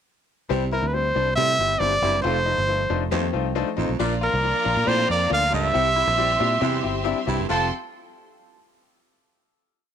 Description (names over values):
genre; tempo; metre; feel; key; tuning
soul; 137 BPM; 4/4; straight; F major; A4 = 438 Hz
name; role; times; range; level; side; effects
clear upright piano; accompaniment; 0.5-7.7 s; G3 to A5; -28 LUFS; left 12 dB; none
percussive tonewheel organ; sustained chords; 0.5-7.7 s; F3 to F4; -35 LUFS; right 18 dB; fast rotary speaker, chorus vibrato
direct-recorded clean electric guitar; riff; 0.5-7.7 s; Bb3 to F4; -33 LUFS; left 12 dB; none
growling baritone saxophone; riff; 0.5-7.7 s; Eb2 to C3; -31 LUFS; right 13 dB; none
fingered electric bass; bass; 0.5-7.7 s; F1 to C3; -26 LUFS; right 1 dB; none
bright trumpet; melody; 0.7-7.7 s; Bb4 to A5; -22 LUFS; right 1 dB; none
clear studio violin section; second line; 4.0-7.7 s; F4 to C6; -30 LUFS; right 2 dB; none
room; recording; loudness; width
light reverb, small room ambience; 1960s-style stereo with parts hard left and right; -20 LUFS; side -8 dB against mid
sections
0.5-7.5 pre-chorus; 7.5-9.2 final chord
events
upright piano fill 3.1-4.0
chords
0.5 C; 2.2 F7; 4.0 Bb; 5.7 C; 7.5 Fadd9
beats
| 0.51 0.94 1.38 1.81 | 2.25 2.69 3.12 3.56 | 3.99 4.43 4.87 5.30 | 5.74 6.18 6.62 7.05 | 7.49